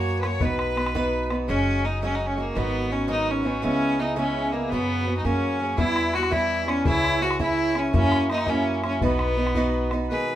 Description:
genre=celtic folk, Celtic jig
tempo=112 BPM (dotted quarters)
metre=6/8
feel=straight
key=B major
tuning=A4 = 441 Hz
part: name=clear fiddle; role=melody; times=0.0-10.4 s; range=A#3 to C#5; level=-26 LUFS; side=left 1 dB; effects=none
part: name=accordion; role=second line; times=0.0-10.4 s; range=A#3 to C#5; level=-30 LUFS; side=left 1 dB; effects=none
part: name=picked swing-style acoustic guitar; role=accompaniment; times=0.0-10.4 s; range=F#2 to C#5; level=-26 LUFS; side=right 2 dB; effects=none
part: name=upright bass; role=bass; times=0.0-10.1 s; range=F#1 to F#2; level=-29 LUFS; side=equal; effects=none
part: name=bodhran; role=percussion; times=0.2-1.4, 5.8-10.0 s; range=none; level=-29 LUFS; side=left 2 dB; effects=none
room=wet studio reverb, RT60 0.5 s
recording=minimal, uncompressed stereo recording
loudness=-21 LUFS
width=side -12 dB against mid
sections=0.0-1.5 A section; 1.5-10.1 A section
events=none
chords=0.4 B; 1.5 F#sus2; 2.6 G#m7; 3.6 C#m7; 4.7 F#sus4; 5.2 F#add9; 5.8 Em6; 6.9 C#m; 7.9 F#7; 9.0 B

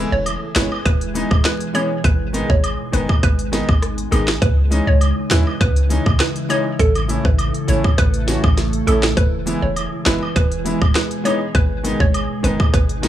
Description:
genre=dancehall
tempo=101 BPM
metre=4/4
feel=straight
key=unclear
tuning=A4 = 441 Hz
part: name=clear concert grand piano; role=accompaniment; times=0.0-13.1 s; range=D#3 to F#4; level=-24 LUFS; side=left 1 dB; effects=none
part: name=glassy FM pad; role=sustained chords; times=0.0-13.1 s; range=B2 to A4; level=-25 LUFS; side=equal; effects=ensemble chorus, built-in reverb, sidechain pumping
part: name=clean 808-style bass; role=bass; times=0.0-13.1 s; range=E1 to D#2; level=-20 LUFS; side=equal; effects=none
part: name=hollow square pluck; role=melody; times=0.1-13.1 s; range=G#4 to C#5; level=-24 LUFS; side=right 1 dB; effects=chorus, tape echo
part: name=island pop drum kit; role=drums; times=0.3-13.1 s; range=handclaps, hi-hat, kick drum, rim click, snare drum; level=-18 LUFS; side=equal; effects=overdrive
part: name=woodblock and cabasa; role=percussion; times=0.3-13.1 s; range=none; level=-29 LUFS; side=right 1 dB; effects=none
room=little or no reverb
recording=dry, gritty hardware recording, small room ambience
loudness=-15 LUFS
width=side -12 dB against mid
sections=0.0-13.1 A section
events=none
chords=0.0 E; 2.0 G#m; 4.4 C#madd9; 6.8 A; 9.2 E; 11.5 G#m

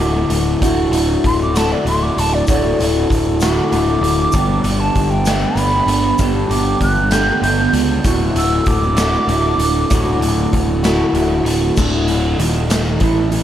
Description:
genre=psychedelic rock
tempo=65 BPM (dotted quarters)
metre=6/8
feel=straight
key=D major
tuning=A4 = 440 Hz
part: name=electric guitar through a small old amp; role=riff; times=0.0-13.4 s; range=D2 to G4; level=-17 LUFS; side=equal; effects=phaser, analog delay
part: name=fuzz picked electric bass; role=bass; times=0.0-13.4 s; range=D1 to C#2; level=-19 LUFS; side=equal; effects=overdrive
part: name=raw garage drum kit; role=drums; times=0.0-13.4 s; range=crash cymbal, hi-hat, kick drum, snare drum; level=-20 LUFS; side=equal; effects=analog delay
part: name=egg shaker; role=percussion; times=0.0-13.1 s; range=none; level=-34 LUFS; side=left 6 dB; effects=none
part: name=mellow hollow jazz flute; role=melody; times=1.3-10.5 s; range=D5 to G6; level=-20 LUFS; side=right 1 dB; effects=analog delay
room=light reverb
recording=echo-heavy mix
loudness=-13 LUFS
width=side -11 dB against mid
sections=0.0-11.8 A section; 11.8-13.4 B section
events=flute solo 0.0-11.8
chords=0.0 D; 4.3 G; 8.1 D; 11.8 D5; 12.4 Eb5

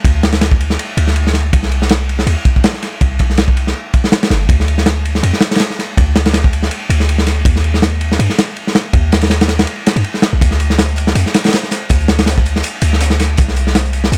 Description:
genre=drum and bass, jungle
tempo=162 BPM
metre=4/4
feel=swing 54% on 16ths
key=unclear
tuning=A4 = 439 Hz
part: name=warm 808-style bass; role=bass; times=0.0-14.2 s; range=G1 to G2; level=-16 LUFS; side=equal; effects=none
part: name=crunchy breakbeat drum kit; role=drums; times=0.0-14.2 s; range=kick drum, ride cymbal, snare drum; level=-16 LUFS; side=equal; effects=none
part: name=crunchy breakbeat drum kit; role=drums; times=10.4-14.2 s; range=hi-hat, snare drum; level=-28 LUFS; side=equal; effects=high-pass filter on hats, high-pass filter on snare, high-pass filter on room
room=little or no reverb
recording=none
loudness=-14 LUFS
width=mono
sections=0.0-14.2 A section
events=none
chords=none

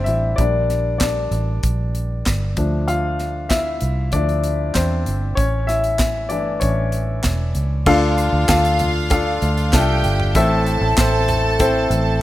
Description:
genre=piano-driven pop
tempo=96 BPM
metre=4/4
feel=straight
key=D minor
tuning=A4 = 440 Hz
part: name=clear baby grand piano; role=accompaniment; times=0.0-12.2 s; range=A2 to F5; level=-20 LUFS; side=left 2 dB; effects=none
part: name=vintage muted fingered electric bass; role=bass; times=0.0-12.2 s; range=E1 to E2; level=-20 LUFS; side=right 1 dB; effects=none
part: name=modern studio drum kit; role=drums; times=0.1-12.1 s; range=crash cymbal, handclaps, hi-hat, kick drum, snare drum, toms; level=-22 LUFS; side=equal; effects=none
part: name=clear studio violin section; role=second line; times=7.9-12.2 s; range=F4 to A5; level=-22 LUFS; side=right 1 dB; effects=none
room=light reverb, studio ambience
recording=rough home demo mix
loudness=-16 LUFS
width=side -15 dB against mid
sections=0.0-7.9 A section; 7.9-12.2 B section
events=grand piano solo 0.0-7.9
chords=0.4 Gm; 2.6 Dm; 5.4 A; 7.9 Dmadd9; 10.4 Am

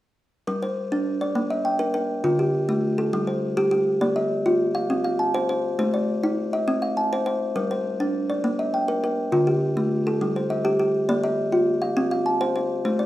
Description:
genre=southern african traditional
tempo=136 BPM (dotted quarters)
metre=12/8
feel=straight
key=G equiheptatonic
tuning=A4 = 439 Hz
part: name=kalimba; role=arpeggios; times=0.5-13.1 s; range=D3 to A5-29c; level=-21 LUFS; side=equal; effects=none
room=moderate recital hall reverb, RT60 1.4 s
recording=minimal, uncompressed stereo recording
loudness=-21 LUFS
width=side -15 dB against mid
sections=0.5-13.1 A section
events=none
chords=0.5 Gm; 1.4 Bb; 2.2 Dm; 3.1 Gsus24; 4.0 Bb; 4.9 F/C; 5.8 Am; 6.7 C; 7.6 Gm; 8.4 Bb; 9.3 Dm; 10.2 Am7/G; 11.1 Bb; 12.0 F/C

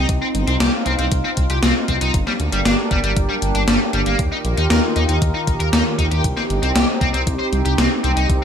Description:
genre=synthwave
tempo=117 BPM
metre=4/4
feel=straight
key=C minor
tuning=A4 = 440 Hz
part: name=chorused pulse-width pad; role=sustained chords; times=0.0-8.4 s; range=Eb3 to Bb4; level=-23 LUFS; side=right 1 dB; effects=sidechain pumping
part: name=overdriven electric guitar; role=riff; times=0.0-8.3 s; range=G3 to C5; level=-23 LUFS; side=left 2 dB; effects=analog chorus, digital delay
part: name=dark detuned saw bass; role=bass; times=0.0-8.4 s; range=G1 to Eb2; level=-20 LUFS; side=equal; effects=none
part: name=electronic kick drum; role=drums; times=0.1-8.4 s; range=none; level=-21 LUFS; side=equal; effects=overdrive, studio reverb
part: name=gated 80s digital drum machine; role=drums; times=0.1-8.4 s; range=hi-hat, snare drum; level=-21 LUFS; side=left 1 dB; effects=gated reverb, gated reverb snare, overdrive, studio reverb
room=light reverb, digital ambience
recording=bright 1980s-style digital production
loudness=-16 LUFS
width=side -8 dB against mid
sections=0.0-8.4 A section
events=none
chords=0.0 Cm; 2.1 Gm; 4.2 Ebadd9; 6.2 Cm

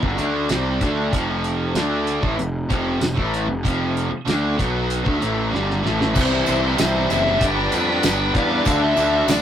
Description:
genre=classic rock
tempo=96 BPM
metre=4/4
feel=straight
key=unclear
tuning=A4 = 438 Hz
part: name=biting overdriven guitar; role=riff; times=0.0-9.4 s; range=F2 to C5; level=-24 LUFS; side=right 3 dB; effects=none
part: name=overdriven semi-hollow guitar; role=riff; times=0.0-9.4 s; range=F2 to C5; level=-24 LUFS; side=left 3 dB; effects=none
part: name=fuzz picked electric bass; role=bass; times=0.0-9.4 s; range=F1 to F2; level=-24 LUFS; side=equal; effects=overdrive
part: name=cloth-damped thuddy drum kit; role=drums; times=0.0-9.4 s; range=crash cymbal, hi-hat, kick drum, snare drum, tambourine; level=-23 LUFS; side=equal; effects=none
part: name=fuzz lead guitar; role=melody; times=6.1-9.4 s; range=C5 to G5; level=-23 LUFS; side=left 2 dB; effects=distortion
part: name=tonewheel organ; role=sustained chords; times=6.1-9.4 s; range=D4 to E5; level=-29 LUFS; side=left 1 dB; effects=none
part: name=tambourine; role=percussion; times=6.2-9.4 s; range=none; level=-35 LUFS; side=left 2 dB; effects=none
room=wet booth ambience, RT60 0.2 s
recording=rough rehearsal-room recording, tube saturation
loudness=-18 LUFS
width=side -9 dB against mid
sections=0.0-6.2 A section; 6.2-9.4 B section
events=drum fill 5.5-6.2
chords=0.0 N.C.; 1.1 F5; 6.2 C; 7.4 G; 8.7 D

